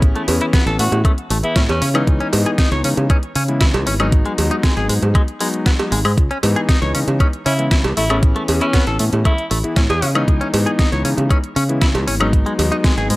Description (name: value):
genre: nu-disco, nu disco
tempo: 117 BPM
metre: 4/4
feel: straight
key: C# minor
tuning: A4 = 437 Hz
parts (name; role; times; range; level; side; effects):
- warm electric grand piano; accompaniment; 0.0-13.2 s; E3 to G#4; -22 LUFS; left 2 dB; vintage 12-bit sampler grit, sidechain pumping
- fingered electric bass; bass; 0.0-13.2 s; G#1 to C#3; -19 LUFS; equal; sidechain pumping
- electronic kick drum; drums; 0.0-12.9 s; none; -14 LUFS; equal; none
- pop drum kit; drums; 0.0-13.2 s; hi-hat, snare drum, woodblock; -22 LUFS; equal; overdrive
- direct-recorded clean electric guitar; riff; 0.2-13.1 s; G#3 to C#5; -24 LUFS; left 1 dB; wide subtle chorus, vintage 12-bit sampler grit
- cowbell; percussion; 0.3-12.7 s; none; -24 LUFS; right 3 dB; none
- breathy tenor saxophone; melody; 0.8-1.9, 7.5-10.1 s; C#4 to G#4; -24 LUFS; equal; tape echo
room: digital ambience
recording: none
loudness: -14 LUFS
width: side -19 dB against mid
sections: 0.0-13.2 A section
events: none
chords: 0.0 Amaj9; 1.8 C#m7; 4.1 G#m7; 6.2 C#m7; 8.0 Amaj9; 10.0 C#m7; 12.3 G#m7